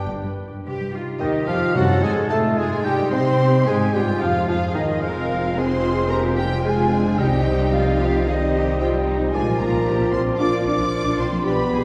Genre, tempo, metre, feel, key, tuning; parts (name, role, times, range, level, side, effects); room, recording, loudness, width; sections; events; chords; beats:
classical, dramatic, fast romantic movement for symphony orchestra; 111 BPM; 4/4; rubato; C minor; A4 = 440 Hz
warm symphonic violin section; melody; 0.0-11.8 s; Eb5 to D6; -33 LUFS; equal
dark clarinet; second line; 0.0-11.8 s; Eb4 to C5; -32 LUFS; equal
rich symphonic violin section; second line; 0.0-11.8 s; Eb4 to D5; -34 LUFS; equal
silver concert flute; second line; 0.0-11.8 s; Eb5 to D6; -33 LUFS; equal
warm oboe; second line; 0.0-11.8 s; D5 to C6; -35 LUFS; equal
warm bassoon; accompaniment; 0.0-11.8 s; Eb3 to D4; -29 LUFS; equal
warm studio viola section; accompaniment; 0.0-11.8 s; Eb3 to G4; -30 LUFS; equal
concert harp; arpeggios; 0.0-11.8 s; F2 to Eb6; -31 LUFS; equal
bright symphonic double bass section; bass; 0.1-11.8 s; F1 to C3; -28 LUFS; equal
clear symphonic cello section; bass; 0.1-11.8 s; G2 to Bb4; -31 LUFS; equal
mellow French horn section; sustained chords; 1.2-11.8 s; Eb3 to D4; -28 LUFS; equal
timpani; percussion; 1.8-2.5, 7.2-8.0 s; C3; -28 LUFS; equal
wet concert hall reverb, RT60 2.0 s; heard from further back in the room; -20 LUFS; mono
0.7-11.8 A section
0.0 G; 0.7 Cm; 1.8 Cdim7/Gb; 2.8 Cm/G; 3.9 Fm; 7.2 Cm; 9.3 Bb
0.08 | 0.65 1.20 1.75 2.30 | 2.85 3.40 3.94 4.48 | 5.02 5.56 6.11 6.65 | 7.19 7.73 8.27 8.80 | 9.34 9.87 10.40 10.93 | 11.45